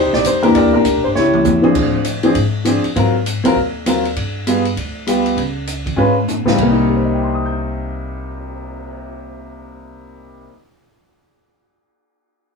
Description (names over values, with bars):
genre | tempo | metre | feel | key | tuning
jazz piano trio | 199 BPM | 4/4 | swing 62% on 8ths | C minor | A4 = 440 Hz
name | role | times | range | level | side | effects
warm upright piano | melody | 0.0-10.7 s | C3 to G6 | -15 LUFS | left 1 dB | none
upright bass | bass | 0.0-10.4 s | G1 to Ab2 | -23 LUFS | left 1 dB | none
open jazz drum kit | drums | 0.1-8.9 s | crash cymbal, cymbal swell, hi-hat, kick drum, ride cymbal, snare drum, toms | -22 LUFS | equal | none
room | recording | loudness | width
moderate small room reverb, RT60 0.5 s | band playing live in one room | -14 LUFS | side -4 dB against mid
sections
0.0-1.8 A section; 1.8-6.6 B section; 6.6-9.0 C section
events
drum fill 1.2-1.8, 6.0-6.6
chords
0.0 Cm7; 0.6 Em7b5; 1.2 C#dim; 1.8 Dm7b5; 3.0 Ab13; 4.2 G7; 5.4 Db; 6.6 Cm7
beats
0.25 | 0.55 0.85 1.16 1.46 | 1.76 2.06 2.36 2.66 | 2.96 3.26 3.56 3.87 | 4.17 4.47 4.77 5.07 | 5.37 5.67 5.97 6.28 | 6.58 6.88 7.18 7.48 | 7.78 8.08 8.38 8.69